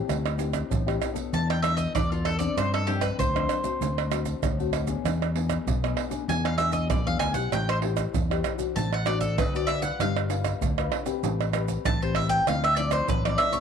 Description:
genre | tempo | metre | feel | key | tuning
samba and choro | 97 BPM | 4/4 | straight | unclear | A4 = 440 Hz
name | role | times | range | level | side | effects
nylon-string guitar | accompaniment | 0.0-13.6 s | G2 to C5 | -32 LUFS | left 13 dB | none
fingered electric bass | bass | 0.1-13.4 s | G1 to G2 | -28 LUFS | left 1 dB | none
maracas, surdo, pandeiro and tamborim | percussion | 0.1-13.6 s | none | -28 LUFS | right 5 dB | none
bowl-back mandolin | melody | 1.3-13.6 s | F4 to A5 | -27 LUFS | equal | none
room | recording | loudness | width
moderate spring reverb, RT60 1.2 s, small room ambience | 1960s-style stereo | -24 LUFS | side -7 dB against mid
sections
0.0-13.6 A section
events
mandolin solo 0.0-13.6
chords
0.1 D9sus4; 1.3 E7sus4; 2.6 G7sus4; 3.8 D7; 5.0 E7; 7.5 Am7; 8.8 D7/A; 10.0 G7; 11.2 Am9; 12.5 Dm9

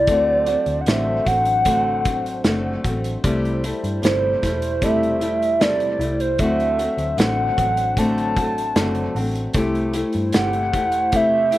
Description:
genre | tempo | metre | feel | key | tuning
indie pop, bedroom pop | 76 BPM | 4/4 | straight | unclear | A4 = 440 Hz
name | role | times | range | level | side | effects
hollow clarinet-like synth lead | melody | 0.0-11.6 s | C5 to A5 | -20 LUFS | right 1 dB | chorus, phaser
flamenco guitar | accompaniment | 0.0-11.6 s | C3 to G4 | -23 LUFS | left 2 dB | warbly pitch drift
hollow soft pad | sustained chords | 0.0-11.6 s | F#3 to C5 | -32 LUFS | equal | chorus
vintage muted picked electric bass | bass | 0.0-11.6 s | E1 to G2 | -27 LUFS | equal | none
loose indie drum kit | drums | 0.1-11.6 s | hi-hat, kick drum, snare drum | -23 LUFS | equal | none
room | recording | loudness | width
little or no reverb | none | -18 LUFS | side -15 dB against mid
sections
0.0-11.6 A section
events
none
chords
0.1 D7; 3.2 C6; 6.4 D7; 9.6 C6

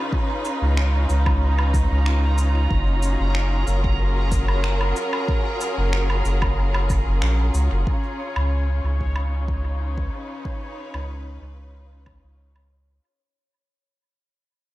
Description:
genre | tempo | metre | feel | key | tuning
ambient dub | 93 BPM | 4/4 | straight | Db mixolydian | A4 = 440 Hz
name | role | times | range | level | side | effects
rich symphonic string section | sustained chords | 0.0-13.0 s | Db3 to Cb5 | -28 LUFS | left 1 dB | none
bubbling stepped-filter texture | texture | 0.0-13.0 s | Db5 to Bb5 | -33 LUFS | right 3 dB | chorus, built-in reverb
electronic kick drum | drums | 0.1-12.2 s | none | -24 LUFS | equal | none
electronic shaker, finger snaps and woodblock | drums | 0.4-12.7 s | none | -31 LUFS | equal | dub echo
soft dub sub bass | bass | 0.6-13.0 s | Gb1 to Db2 | -20 LUFS | equal | tube saturation
room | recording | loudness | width
little or no reverb | none | -19 LUFS | side -17 dB against mid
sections
0.0-7.9 A section; 7.9-13.0 B section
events
fade-out 7.9-13.0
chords
0.0 Db7; 2.7 Gbmaj7; 7.9 Db7

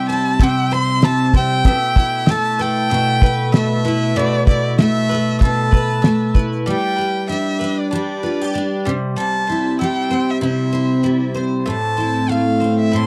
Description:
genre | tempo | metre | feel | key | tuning
acoustic pop | 96 BPM | 4/4 | swing 55% on 16ths | unclear | A4 = 437 Hz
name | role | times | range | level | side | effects
warm violin | melody | 0.0-13.1 s | D5 to C6 | -23 LUFS | equal | none
picked steel-string acoustic guitar | accompaniment | 0.0-13.1 s | A2 to C5 | -20 LUFS | equal | double-tracked
bowl-back mandolin | arpeggios | 0.0-13.1 s | G3 to G5 | -30 LUFS | equal | none
cloth-damped thuddy drum kit | drums | 0.1-6.7 s | kick drum, shaker, snare drum | -15 LUFS | equal | none
room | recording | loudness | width
little or no reverb | dry, close 1970s-style studio recording | -17 LUFS | mono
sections
0.0-6.7 A section; 6.7-13.1 B section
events
none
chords
0.0 C; 1.7 Esus4/B; 6.7 G; 8.9 C; 11.7 Am

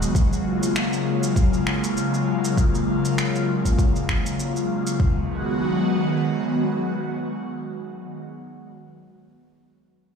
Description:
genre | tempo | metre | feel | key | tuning
sunset chillout | 99 BPM | 4/4 | swing 56% on 16ths | G# dorian | A4 = 438 Hz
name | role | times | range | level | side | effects
airy breathy pad | sustained chords | 0.0-8.2 s | C#3 to F#4 | -22 LUFS | left 1 dB | chorus, phaser
electronic shaker and finger snaps | drums | 0.0-5.0 s | none | -30 LUFS | equal | overdrive
deep house drum kit | drums | 0.1-5.2 s | kick drum, toms | -21 LUFS | equal | overdrive
room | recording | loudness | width
moderate lush hall reverb, RT60 2.2 s | played on a big sound system in a bare room, large studio reverb | -20 LUFS | side -6 dB against mid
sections
0.0-5.0 A section; 5.0-7.4 B section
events
none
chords
0.1 F#maj9; 5.0 G#m7

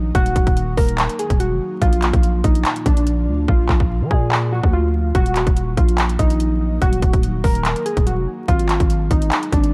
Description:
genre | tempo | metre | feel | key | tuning
hip hop, trap | 144 BPM | 4/4 | half-time | Eb harmonic minor | A4 = 440 Hz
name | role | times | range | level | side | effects
warbly lo-fi synth keys | melody | 0.0-9.7 s | D4 to Bb4 | -25 LUFS | equal | chorus, low-pass filter, tape echo
ethereal airy pad | sustained chords | 0.0-9.7 s | Bb2 to Ab4 | -33 LUFS | equal | none
growling 808-style bass | bass | 0.0-9.7 s | Eb1 to F3 | -22 LUFS | equal | none
trap drum kit | drums | 0.1-9.7 s | handclaps, hi-hat, kick drum | -20 LUFS | equal | none
room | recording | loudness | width
digital ambience | dark, warm production, vinyl crackle | -18 LUFS | mono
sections
0.0-9.7 A section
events
hi-hats muted 3.5-5.2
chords
0.0 Ebm; 1.8 Bb; 5.2 Ebm; 8.5 Abm

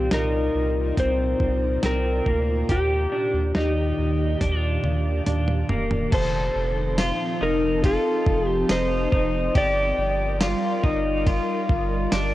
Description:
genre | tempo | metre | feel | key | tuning
dream pop | 70 BPM | 4/4 | straight | unclear | A4 = 436 Hz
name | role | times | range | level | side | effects
electric slide guitar | melody | 0.0-10.8 s | G4 to D5 | -26 LUFS | equal | ping-pong delay, shimmer reverb
ethereal airy pad | sustained chords | 0.0-12.3 s | Bb2 to A5 | -30 LUFS | equal | ensemble chorus, built-in reverb, shimmer reverb
electric guitar at the edge of break-up | arpeggios | 0.0-12.3 s | Bb3 to A4 | -27 LUFS | left 2 dB | lush chorus, ping-pong delay, shimmer reverb
saturated sub bass | bass | 0.0-12.3 s | Eb1 to Eb2 | -26 LUFS | equal | tube saturation
dusty soul sampler-style drum kit | drums | 0.1-12.3 s | crash cymbal, hi-hat, kick drum, ride cymbal, snare drum, tambourine, toms | -24 LUFS | equal | overdrive
room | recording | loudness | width
light reverb, digital ambience | worn, warbling old tape, cassette tape, warbly pitch drift | -20 LUFS | side -15 dB against mid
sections
0.0-6.1 A section; 6.1-12.3 B section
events
drum fill 4.4-6.1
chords
0.0 Cm11; 2.7 Ebmaj7; 6.1 F7; 9.6 Gm7

